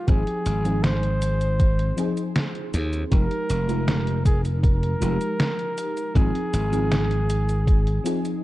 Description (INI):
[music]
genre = vaporwave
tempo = 79 BPM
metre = 4/4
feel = straight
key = Ab major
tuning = A4 = 441 Hz
[part]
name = breathy flugelhorn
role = melody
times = 0.0-8.4 s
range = Ab4 to C5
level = -29 LUFS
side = equal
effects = tape echo
[part]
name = mellow FM electric piano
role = accompaniment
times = 0.0-8.4 s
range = F3 to Bb4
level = -28 LUFS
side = equal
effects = phaser, ensemble chorus
[part]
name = glassy slap bass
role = bass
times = 0.1-8.0 s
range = F1 to Eb2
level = -23 LUFS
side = equal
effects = tube saturation
[part]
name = detuned 8-bit digital drum machine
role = drums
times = 0.1-8.4 s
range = cabasa, hi-hat, snare drum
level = -27 LUFS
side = equal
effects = overdrive, vintage 12-bit sampler grit
[part]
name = electronic kick drum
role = drums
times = 0.1-7.8 s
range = none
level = -19 LUFS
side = equal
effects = vintage 12-bit sampler grit
[sound]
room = little or no reverb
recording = dark, warm production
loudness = -20 LUFS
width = side -16 dB against mid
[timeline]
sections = 0.0-8.4 A section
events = none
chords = 0.1 Ab6; 3.1 Fm9; 6.2 Ab6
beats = | 0.08 0.84 1.60 2.36 | 3.12 3.88 4.63 5.39 | 6.15 6.91 7.67 8.43